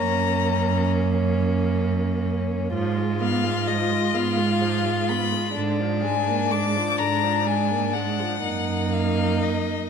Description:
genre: classical, slow romantic movement for string quartet.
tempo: 42 BPM (dotted quarters).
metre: 6/8.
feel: rubato.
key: unclear.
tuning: A4 = 440 Hz.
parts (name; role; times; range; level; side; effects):
rich violin; melody; 0.0-9.9 s; Eb5 to D6; -26 LUFS; left 10 dB; none.
rich violin; second line; 0.0-9.9 s; Db4 to F4; -27 LUFS; left 4 dB; none.
warm viola; accompaniment; 0.0-9.9 s; D3 to Cb4; -28 LUFS; right 3 dB; none.
rich cello; bass; 0.0-9.9 s; Gb2 to Ab2; -25 LUFS; right 5 dB; none.
room: moderate scoring stage reverb, RT60 1.5 s.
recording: none.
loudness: -21 LUFS.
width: side -6 dB against mid.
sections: 0.0-9.9 A section.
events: none.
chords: 0.0 Gb; 2.7 Fdim/Ab; 5.6 Bb7/Ab; 8.4 Ebm/Gb.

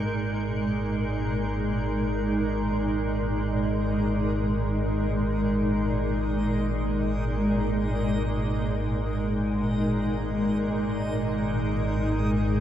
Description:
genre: ambient.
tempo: free time.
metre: none.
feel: none.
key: unclear.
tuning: A4 = 440 Hz.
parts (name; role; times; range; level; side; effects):
granular cloud pad; sustained chords; 0.0-12.6 s; A#2 to A#4; -26 LUFS; equal; built-in reverb, shimmer reverb.
analog drone; drone; 0.0-12.6 s; G#1 to G#2; -28 LUFS; equal; chorus.
backwards swelling texture; texture; 1.3-12.6 s; D#5; -42 LUFS; right 2 dB; built-in reverb, shimmer reverb.
room: wet cathedral reverb, RT60 6.6 s.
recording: none.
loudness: -24 LUFS.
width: side -10 dB against mid.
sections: 0.1-12.6 A section.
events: fade-in on synth texture 0.1-12.6.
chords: 0.1 G#sus2.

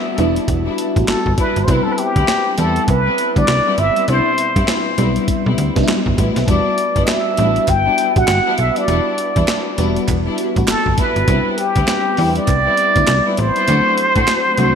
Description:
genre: R&B, new jack swing.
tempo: 100 BPM.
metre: 4/4.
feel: swing 61% on 16ths.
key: E minor.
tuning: A4 = 440 Hz.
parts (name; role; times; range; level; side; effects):
FM electric piano with soft pad layer; accompaniment; 0.0-14.8 s; B2 to G4; -21 LUFS; left 1 dB; chorus, phaser.
warm studio string section; stabs; 0.2-14.8 s; G3 to F#4; -24 LUFS; left 3 dB; none.
slap-like FM bass; bass; 0.2-14.8 s; E1 to A2; -18 LUFS; equal; none.
breakbeat sampler-style drum kit; drums; 0.2-14.7 s; handclaps, hi-hat, kick drum, snare drum; -20 LUFS; equal; gated reverb.
trumpet with plunger mute; melody; 1.1-14.8 s; G4 to G5; -17 LUFS; equal; ping-pong delay.
group handclap; percussion; 7.1-14.4 s; none; -33 LUFS; right 8 dB; none.
room: moderate plate reverb, RT60 2.8 s.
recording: bright 1980s-style digital production.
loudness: -13 LUFS.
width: side -7 dB against mid.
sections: 0.0-14.8 A section.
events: none.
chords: 0.0 Em7; 1.7 Cmaj7; 6.5 Em7; 11.3 Cmaj7; 13.7 D7.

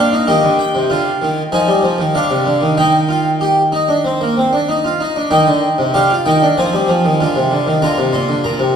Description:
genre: classical, baroque-style 3-part fugue for harpsichord.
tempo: 96 BPM.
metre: 4/4.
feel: straight.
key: Eb major.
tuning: A4 = 440 Hz.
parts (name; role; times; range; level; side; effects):
harpsichord; solo; 0.0-8.8 s; Bb2 to C6; -12 LUFS; equal; none.
room: wet recital hall reverb, RT60 1.7 s.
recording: heard from further back in the room.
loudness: -12 LUFS.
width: side -7 dB against mid.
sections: 0.0-5.3 A section; 5.3-8.8 B section.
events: none.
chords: 0.3 Cm; 1.5 Fm7; 2.1 Csus24; 2.8 Eb; 6.6 Fm7; 7.8 Bb.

